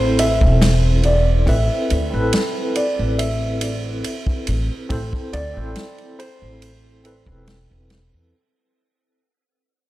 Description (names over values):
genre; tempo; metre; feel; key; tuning
trip hop; 70 BPM; 4/4; straight; A minor; A4 = 439 Hz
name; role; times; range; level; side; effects
felt-muted upright piano; melody; 0.0-7.4 s; C5 to E5; -24 LUFS; equal; tape echo
tine electric piano; accompaniment; 0.0-8.4 s; C4 to C5; -26 LUFS; equal; tremolo, tape echo
upright bass; bass; 0.0-8.3 s; E1 to E2; -19 LUFS; equal; tube saturation
wind-like tuned noise texture; texture; 0.0-8.3 s; C4; -31 LUFS; equal; built-in reverb, wide subtle chorus
vintage drum kit; drums; 0.2-8.1 s; kick drum, ride cymbal, snare drum; -24 LUFS; equal; none
room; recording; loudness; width
moderate plate reverb, RT60 2.6 s; dreamy mix soaked in reverb; -17 LUFS; side -16 dB against mid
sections
0.0-8.3 A section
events
fade-out 0.0-8.3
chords
0.0 Amadd9